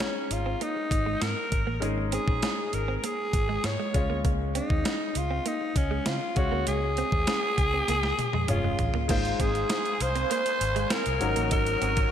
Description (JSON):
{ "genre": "1980s-style pop", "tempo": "99 BPM", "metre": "4/4", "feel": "straight", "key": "unclear", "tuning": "A4 = 440 Hz", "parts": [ { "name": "breathy alto saxophone", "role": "melody", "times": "0.0-12.1 s", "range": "Db4 to Db5", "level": "-29 LUFS", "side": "equal", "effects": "none" }, { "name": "bright concert grand piano", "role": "accompaniment", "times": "0.0-12.1 s", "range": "Gb3 to F5", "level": "-34 LUFS", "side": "left 4 dB", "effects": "none" }, { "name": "direct-recorded clean electric guitar", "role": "riff", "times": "0.0-11.9 s", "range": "Ab3 to Eb4", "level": "-36 LUFS", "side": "right 6 dB", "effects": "wide subtle chorus" }, { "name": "clean 12-bit digital drum machine", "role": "drums", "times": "0.0-12.1 s", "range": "crash cymbal, hi-hat, kick drum, snare drum, toms", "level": "-29 LUFS", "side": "equal", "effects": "gated reverb" }, { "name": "vintage muted fingered electric bass", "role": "bass", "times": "0.3-12.0 s", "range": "F1 to Db3", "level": "-31 LUFS", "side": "equal", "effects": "none" }, { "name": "string machine, violins", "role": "sustained chords", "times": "9.1-12.1 s", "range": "C5 to Eb6", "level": "-35 LUFS", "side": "equal", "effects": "ensemble chorus" } ], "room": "moderate lush hall reverb, RT60 2.4 s", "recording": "bright 1980s-style digital production", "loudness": "-24 LUFS", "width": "side -9 dB against mid", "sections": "0.0-9.1 A section; 9.1-12.1 B section", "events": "drum fill 7.9-9.1", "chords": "0.0 Absus4; 3.9 Db; 9.1 Fm7/Ab; 11.2 Ebm7/Ab", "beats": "0.00 0.61 1.22 | 1.82 2.43 3.03 3.64 | 4.25 4.85 5.46 6.06 | 6.67 7.28 7.88 8.49 | 9.10 9.70 10.31 10.91 | 11.52" }